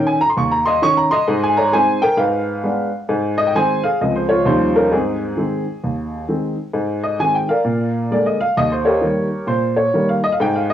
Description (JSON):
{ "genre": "jazz, stride piano", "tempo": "132 BPM", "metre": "4/4", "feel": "swing 63% on 8ths", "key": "Ab major", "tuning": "A4 = 440 Hz", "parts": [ { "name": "warm upright piano", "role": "solo", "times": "0.0-10.7 s", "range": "Db2 to Db6", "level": "-15 LUFS", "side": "equal", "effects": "none" } ], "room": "moderate spring reverb, RT60 1.2 s, small room ambience", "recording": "home recording on cassette", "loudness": "-15 LUFS", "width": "side -10 dB against mid", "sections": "0.0-6.7 A section; 6.7-10.7 A section", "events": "none", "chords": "0.0 Eb7(no3); 1.3 Ab; 2.2 Abdim7; 3.1 Ab; 4.0 Dbmaj7; 4.5 Eb9; 4.9 Ab; 7.7 Bb7; 8.6 Eb7" }